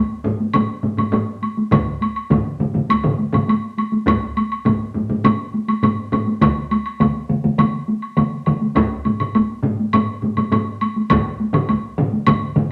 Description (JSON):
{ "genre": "japanese traditional, taiko drum ensemble", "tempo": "102 BPM", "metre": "4/4", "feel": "straight", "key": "none", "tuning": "none", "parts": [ { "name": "taiko ensemble", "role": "percussion", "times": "0.2-12.7 s", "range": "none", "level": "-25 LUFS", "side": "equal", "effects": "none" }, { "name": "solo taiko drums", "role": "percussion", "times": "0.3-12.7 s", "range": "none", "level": "-22 LUFS", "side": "equal", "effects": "none" }, { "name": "woodblock", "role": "percussion", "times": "0.5-12.4 s", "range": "none", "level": "-26 LUFS", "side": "equal", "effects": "none" }, { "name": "solo taiko drums", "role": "percussion", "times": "1.7-12.7 s", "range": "none", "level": "-23 LUFS", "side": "equal", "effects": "none" }, { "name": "taiko ensemble", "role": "percussion", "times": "1.7-12.4 s", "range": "none", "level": "-28 LUFS", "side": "equal", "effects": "none" } ], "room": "wet studio reverb, RT60 0.8 s", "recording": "none", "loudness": "-19 LUFS", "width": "mono", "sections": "0.0-12.7 A section", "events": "none", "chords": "none", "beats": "0.54 1.13 | 1.72 2.31 2.90 3.48 | 4.07 4.66 5.25 5.83 | 6.42 7.01 7.59 8.18 | 8.76 9.35 9.93 10.52 | 11.10 11.69 12.27" }